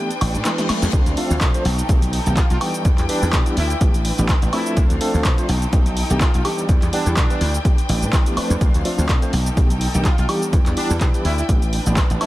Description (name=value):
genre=filtered disco house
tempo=125 BPM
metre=4/4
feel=swing 55% on 16ths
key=unclear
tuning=A4 = 445 Hz
part: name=tine electric piano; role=accompaniment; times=0.0-12.3 s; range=D#3 to C5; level=-25 LUFS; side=equal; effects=fast tremolo, phaser, sidechain pumping
part: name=rich studio string section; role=sustained chords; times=0.0-12.3 s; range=D4 to G5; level=-28 LUFS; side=equal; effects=sidechain pumping
part: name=reverse cymbal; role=sound effects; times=0.2-0.9 s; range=none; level=-34 LUFS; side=left 6 dB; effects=none
part: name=punchy analog drum machine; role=drums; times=0.1-12.3 s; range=handclaps, hi-hat, shaker, snare drum, woodblock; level=-26 LUFS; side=equal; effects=sidechain pumping on hats, sidechain pumping on perc
part: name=dry thumbed slap bass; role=bass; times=0.2-12.2 s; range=A1 to B2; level=-21 LUFS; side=equal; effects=tube saturation, sidechain pumping
part: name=electronic kick drum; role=drums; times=0.9-12.1 s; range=none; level=-17 LUFS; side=equal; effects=none
part: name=clear horn section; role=melody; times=2.4-12.3 s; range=D4 to F4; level=-31 LUFS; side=right 1 dB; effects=vintage 12-bit sampler grit, sidechain pumping, analog delay
room=light reverb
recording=none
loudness=-16 LUFS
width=side -16 dB against mid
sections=0.0-12.3 A section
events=break 0.0-0.9; reverse cymbal 0.2-0.9; drum fill 0.5-0.9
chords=0.0 A9sus4; 0.9 Dm7; 1.7 B7alt; 2.9 Em7; 3.8 A9sus4; 4.8 Dm7; 5.5 B7alt; 6.7 Em7; 7.7 A9sus4; 8.6 Dm7; 9.3 B7alt; 10.5 Em7; 11.5 A9sus4